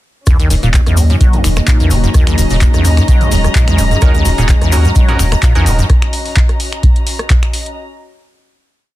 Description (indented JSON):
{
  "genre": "acid house",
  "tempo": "128 BPM",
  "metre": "4/4",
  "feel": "swing 54% on 16ths",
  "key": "Eb minor",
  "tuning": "A4 = 440 Hz",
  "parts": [
    { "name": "warm analog pad", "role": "sustained chords", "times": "0.3-5.9 s", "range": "Db3 to Eb4", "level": "-22 LUFS", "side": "equal", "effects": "chorus, sidechain pumping" },
    { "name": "acid bass, square", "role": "riff", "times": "0.3-5.8 s", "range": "Eb2 to Gb3", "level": "-14 LUFS", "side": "equal", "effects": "tube saturation, analog chorus, sidechain pumping" },
    { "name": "booming analog drum machine", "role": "drums", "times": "0.3-7.7 s", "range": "finger snaps, handclaps, hi-hat, rim click", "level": "-21 LUFS", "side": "equal", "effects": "none" },
    { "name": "electronic kick drum", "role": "drums", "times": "0.3-7.4 s", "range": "none", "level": "-11 LUFS", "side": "equal", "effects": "none" },
    { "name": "tube shaker", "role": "percussion", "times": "0.3-5.9 s", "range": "none", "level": "-26 LUFS", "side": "left 5 dB", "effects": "none" },
    { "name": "dark chamber string section", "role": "texture", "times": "0.3-7.8 s", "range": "Db4 to Bb5", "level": "-22 LUFS", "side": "left 1 dB", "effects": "sidechain pumping" },
    { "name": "saturated sub bass", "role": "bass", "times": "0.5-5.8 s", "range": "Eb1 to Eb2", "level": "-13 LUFS", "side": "equal", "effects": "tube saturation, sidechain pumping" },
    { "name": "band-passed chord stab", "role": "stabs", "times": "4.0-5.9 s", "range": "Db4 to Bb4", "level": "-22 LUFS", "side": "right 2 dB", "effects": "phaser, cassette tape, tape echo" }
  ],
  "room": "light reverb",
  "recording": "dense, heavily limited modern master",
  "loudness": "-9 LUFS",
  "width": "side -16 dB against mid",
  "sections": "0.3-7.8 drop",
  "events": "drop 0.3-7.8",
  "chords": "0.3 Ebm7"
}